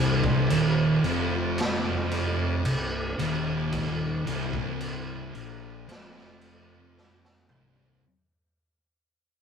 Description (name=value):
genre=stoner and doom metal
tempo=56 BPM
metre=4/4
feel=straight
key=C minor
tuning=A4 = 440 Hz
part: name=thick fuzz guitar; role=riff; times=0.0-8.0 s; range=C2 to Bb2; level=-29 LUFS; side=left 6 dB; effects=distortion
part: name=thick fuzz guitar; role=riff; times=0.0-8.0 s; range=C2 to Bb2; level=-29 LUFS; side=right 7 dB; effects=distortion
part: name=fuzz fingered electric bass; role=bass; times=0.0-8.0 s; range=C1 to Bb1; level=-35 LUFS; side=equal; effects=overdrive
part: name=raw garage drum kit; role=drums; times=0.2-8.0 s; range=crash cymbal, kick drum, snare drum, toms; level=-31 LUFS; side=equal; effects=none
room=light reverb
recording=rough rehearsal-room recording, warm saturation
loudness=-24 LUFS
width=side -7 dB against mid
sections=0.0-8.0 A section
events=fade-out 0.0-8.0; drum fill 7.0-8.0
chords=0.0 Cm